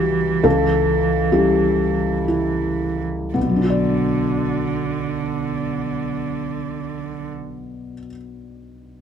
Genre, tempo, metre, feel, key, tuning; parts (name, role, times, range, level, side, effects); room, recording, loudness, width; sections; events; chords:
neoclassical piano and strings; 54-74 BPM; 3/4; rubato; B minor; A4 = 440 Hz
warm cello; second line; 0.0-7.3 s; D3 to E3; -24 LUFS; right 9 dB
felt-muted upright piano; accompaniment; 0.0-9.0 s; B1 to D5; -20 LUFS; left 2 dB
light reverb; -18 LUFS; side -8 dB against mid
0.0-3.4 A section; 3.4-6.5 B section
slowing down 0.0-3.4
0.0 C#dim; 3.4 Bm